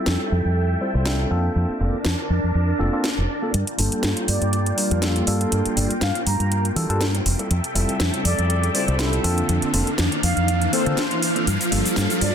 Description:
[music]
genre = filtered disco house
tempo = 121 BPM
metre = 4/4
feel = swing 54% on 16ths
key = G dorian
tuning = A4 = 440 Hz
[part]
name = tine electric piano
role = accompaniment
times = 0.0-12.3 s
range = G3 to C5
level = -26 LUFS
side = equal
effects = medium tremolo, phaser, low-pass filter
[part]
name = string machine, full ensemble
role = sustained chords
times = 0.0-12.3 s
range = Bb3 to A5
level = -28 LUFS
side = equal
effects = ensemble chorus, low-pass filter
[part]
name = fingered electric bass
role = bass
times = 0.1-12.3 s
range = F1 to E3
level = -22 LUFS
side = equal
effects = low-pass filter
[part]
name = house drum kit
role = drums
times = 0.1-12.3 s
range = hi-hat, shaker, snare drum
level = -25 LUFS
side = equal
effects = overdrive
[part]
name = riser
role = sound effects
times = 6.3-12.3 s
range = none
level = -29 LUFS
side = right 1 dB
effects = none
[part]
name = analog synth brass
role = melody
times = 4.3-12.3 s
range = C5 to Bb5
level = -28 LUFS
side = left 1 dB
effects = chorus, vintage 12-bit sampler grit, low-pass filter, digital delay
[sound]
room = light reverb, digital ambience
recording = dense, heavily limited modern master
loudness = -19 LUFS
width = side -8 dB against mid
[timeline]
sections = 0.0-3.5 A section; 3.5-12.3 B section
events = build-up 3.5-12.3; filter sweep 3.5-12.3; riser 6.3-12.3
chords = 0.0 Fmaj9; 1.6 Bbmaj7/F; 3.5 Gm9; 7.3 Fmaj9; 9.5 Bbmaj7/F; 11.5 Gm9

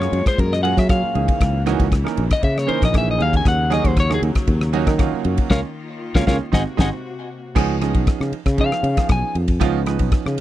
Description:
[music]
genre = electric jazz fusion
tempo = 117 BPM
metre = 4/4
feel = straight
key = Ab mixolydian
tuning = A4 = 439 Hz
[part]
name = lightly driven lead guitar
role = melody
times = 0.0-9.4 s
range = Ab4 to Ab5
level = -23 LUFS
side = left 3 dB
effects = none
[part]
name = warm grand piano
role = accompaniment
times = 0.0-10.4 s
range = Fb3 to Cb5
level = -24 LUFS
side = right 11 dB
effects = none
[part]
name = bright studio string section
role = sustained chords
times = 0.0-7.6 s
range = Bb2 to Gb4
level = -31 LUFS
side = left 3 dB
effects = none
[part]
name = sustaining fretless electric bass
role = bass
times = 0.0-10.4 s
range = Ab1 to Gb3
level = -21 LUFS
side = equal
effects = none
[part]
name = damped 70s drum kit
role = drums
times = 0.0-10.4 s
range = crash cymbal, kick drum, ride cymbal, rim click, snare drum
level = -19 LUFS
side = left 1 dB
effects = none
[sound]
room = little or no reverb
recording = dry, close 1970s-style studio recording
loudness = -16 LUFS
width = side -14 dB against mid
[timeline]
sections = 0.0-7.6 A section; 7.6-10.4 A section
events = lead electric guitar solo 0.0-10.4; band accent 5.5-7.6; drum fill 7.0-7.6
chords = 0.0 Gbmaj9; 1.2 Dbm6; 3.2 Ab9sus4/Eb; 5.5 Db69; 6.5 Ab9; 7.6 Db7

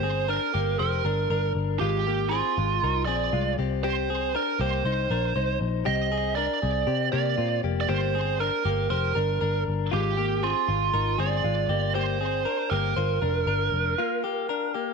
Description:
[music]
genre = jangly indie pop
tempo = 118 BPM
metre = 4/4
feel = straight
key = C minor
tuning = A4 = 441 Hz
[part]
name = biting lead guitar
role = melody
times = 0.0-14.9 s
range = F4 to Eb5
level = -27 LUFS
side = right 12 dB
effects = overdrive, slapback echo
[part]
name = direct-recorded clean electric guitar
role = arpeggios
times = 0.0-14.9 s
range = Ab3 to C5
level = -29 LUFS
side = left 16 dB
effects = slapback echo
[part]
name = vintage muted picked electric bass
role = bass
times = 0.0-13.9 s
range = F1 to C3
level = -28 LUFS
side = left 1 dB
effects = none
[sound]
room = light reverb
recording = 1960s-style stereo with parts hard left and right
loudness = -23 LUFS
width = side -5 dB against mid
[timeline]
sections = 0.0-14.9 A section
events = break 14.0-14.9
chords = 0.0 Gm; 1.8 Fm7/Ab; 3.6 Cmadd9; 7.9 Gm; 9.9 Fm7/Ab; 11.7 Gm7

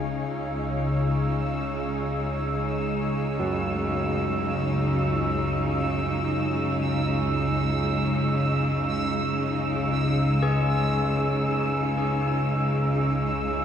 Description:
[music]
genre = dark ambient drone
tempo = free time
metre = none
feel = none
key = C# minor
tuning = A4 = 440 Hz
[part]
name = rich studio cello section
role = sustained chords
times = 0.0-13.6 s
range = C#3 to D#4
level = -29 LUFS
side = equal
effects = none
[part]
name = organ-like drone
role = drone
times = 0.0-13.6 s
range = C#2 to C#3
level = -26 LUFS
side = equal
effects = ensemble chorus, built-in reverb
[part]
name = bubbling stepped-filter texture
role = texture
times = 0.1-13.6 s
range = E6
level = -31 LUFS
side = right 3 dB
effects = chorus, built-in reverb
[part]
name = carillon bells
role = arpeggios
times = 3.4-13.6 s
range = F#3 to G#4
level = -31 LUFS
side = equal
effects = tape echo
[sound]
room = wet cathedral reverb, RT60 6.3 s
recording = none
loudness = -23 LUFS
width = side -8 dB against mid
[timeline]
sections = 0.0-13.6 A section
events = none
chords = 0.0 C#m

